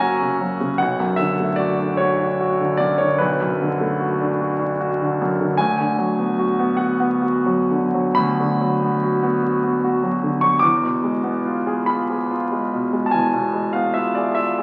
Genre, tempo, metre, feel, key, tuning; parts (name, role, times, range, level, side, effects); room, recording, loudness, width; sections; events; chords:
classical, romantic nocturne for solo piano; 41-52 BPM (dotted quarters); 12/8; rubato; A4 = 440 Hz
warm concert grand piano; solo; 0.0-14.6 s; B1 to D6; -20 LUFS; equal
wet recital hall reverb, RT60 1.6 s; very old 78 rpm record, vinyl crackle; -20 LUFS; mono
0.0-14.6 A section
0.0 F#7; 0.8 Bm7; 5.6 Bm/D; 10.6 E7b9